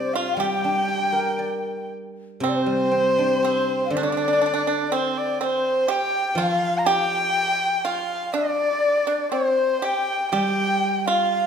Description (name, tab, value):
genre	chinese traditional, Chinese chamber ensemble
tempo	60 BPM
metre	2/4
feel	rubato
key	G yu mode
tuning	A4 = 441 Hz
part	warm erhu	melody	0.0-11.5 s	C5 to Bb5	-25 LUFS	right 1 dB	none
part	breathy xiao	second line	0.0-11.5 s	C5 to G5	-24 LUFS	left 4 dB	none
part	pipa	second line	0.0-11.5 s	C4 to G4	-26 LUFS	right 5 dB	none
part	guzheng	accompaniment	0.0-11.5 s	C3 to D5	-28 LUFS	equal	none
room	wet recital hall reverb, RT60 1.5 s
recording	minimal, uncompressed stereo recording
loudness	-20 LUFS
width	side -7 dB against mid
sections	0.0-2.4 A section; 2.4-11.5 B section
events	none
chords	none